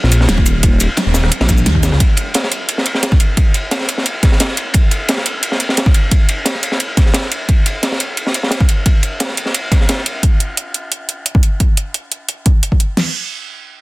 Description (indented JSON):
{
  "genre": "liquid drum and bass",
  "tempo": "175 BPM",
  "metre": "4/4",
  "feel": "straight",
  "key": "unclear",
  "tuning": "A4 = 440 Hz",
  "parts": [
    { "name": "swelling detuned saw bass", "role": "bass", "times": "0.0-2.0 s", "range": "Eb1 to Eb2", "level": "-13 LUFS", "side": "equal", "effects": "tube saturation" },
    { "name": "crunchy breakbeat drum kit", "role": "drums", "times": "0.0-10.1 s", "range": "ride cymbal, snare drum", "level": "-18 LUFS", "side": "equal", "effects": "high-pass filter on cymbals, high-pass filter on snare, high-pass filter on room" },
    { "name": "pop drum kit", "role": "drums", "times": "0.1-12.9 s", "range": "hi-hat, rim click, shaker, snare drum", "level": "-18 LUFS", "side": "right 1 dB", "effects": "overdrive" },
    { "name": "pop drum kit", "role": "drums", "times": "0.4-13.1 s", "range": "crash cymbal, kick drum, snare drum", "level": "-12 LUFS", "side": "equal", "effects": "overdrive" }
  ],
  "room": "little or no reverb",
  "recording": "dense, heavily limited modern master",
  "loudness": "-12 LUFS",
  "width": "side -21 dB against mid",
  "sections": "0.0-13.0 A section",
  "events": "none",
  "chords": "none",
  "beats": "0.29 | 0.63 0.97 1.31 1.66 | 2.00 2.34 2.69 3.03 | 3.37 3.71 4.06 4.40 | 4.74 5.09 5.43 5.77 | 6.12 6.46 6.80 7.14 | 7.49 7.83 8.17 8.52 | 8.86 9.20 9.54 9.89 | 10.23 10.57 10.91 11.26 | 11.60 11.94 12.29 12.63 | 12.97"
}